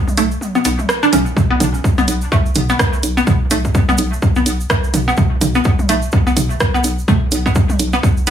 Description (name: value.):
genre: minimal techno.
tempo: 126 BPM.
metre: 4/4.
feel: swing 58% on 16ths.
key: unclear.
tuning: A4 = 442 Hz.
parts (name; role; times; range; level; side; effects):
egg shaker; percussion; 0.1-8.3 s; none; -28 LUFS; right 4 dB; none.
electronic toms; percussion; 0.1-7.8 s; none; -22 LUFS; right 1 dB; tape echo.
hollow square pluck; riff; 0.2-8.3 s; A3 to D4; -18 LUFS; equal; lush chorus, cassette tape, sidechain pumping, dub echo.
hollow knocking FM bass; bass; 0.2-8.3 s; B1; -19 LUFS; equal; sidechain pumping.
house drum kit; drums; 0.2-8.3 s; hi-hat, rim click; -20 LUFS; right 2 dB; overdrive.
electronic kick drum; drums; 1.4-8.1 s; none; -15 LUFS; equal; overdrive.
room: light reverb.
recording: studio ambience.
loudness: -13 LUFS.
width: side -9 dB against mid.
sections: 0.0-1.4 A section; 1.4-8.3 B section.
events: kick drops out 0.4-1.4; drop 1.4-8.3.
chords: none.